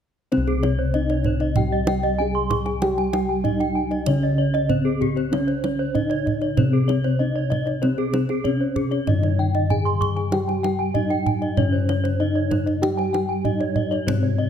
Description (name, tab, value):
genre	Balinese gamelan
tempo	96 BPM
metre	4/4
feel	straight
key	C pelog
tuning	A4 = 440 Hz
part	gamelan-type bronze metallophone	melody	0.3-14.5 s	C4 to Ab4-20c	-25 LUFS	left 2 dB	tape echo
part	gamelan-type bronze metallophone	accompaniment	0.3-14.5 s	C3 to G3-30c	-30 LUFS	right 3 dB	none
part	gamelan-type bronze metallophone	arpeggios	0.3-14.5 s	G4-30c to Db6+20c	-29 LUFS	left 6 dB	none
part	gamelan-type bossed gongs	bass	0.3-14.5 s	C2 to G4-30c	-24 LUFS	left 1 dB	none
part	kendang	percussion	0.3-14.2 s	none	-27 LUFS	right 5 dB	none
part	gamelan-type bronze metallophone	arpeggios	0.5-14.4 s	Ab4-20c to C6	-28 LUFS	right 7 dB	none
room	light reverb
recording	close, detailed microphones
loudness	-19 LUFS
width	side -8 dB against mid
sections	0.3-14.5 A section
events	none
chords	none